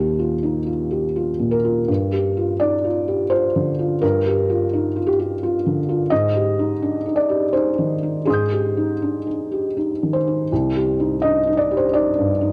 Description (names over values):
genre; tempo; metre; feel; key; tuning
neoclassical minimalist piano; 79-87 BPM; 3/4; rubato; C minor; A4 = 440 Hz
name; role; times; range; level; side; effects
felt-muted upright piano; solo; 0.0-12.5 s; C2 to G6; -20 LUFS; equal; none
room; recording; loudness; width
moderate spring reverb, RT60 1.6 s, small room ambience; home recording on cassette; -20 LUFS; mono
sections
0.0-10.5 A section; 10.5-12.5 A section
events
none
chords
0.0 Ebadd9; 1.9 Gm7; 6.1 Abmaj7; 10.5 Cm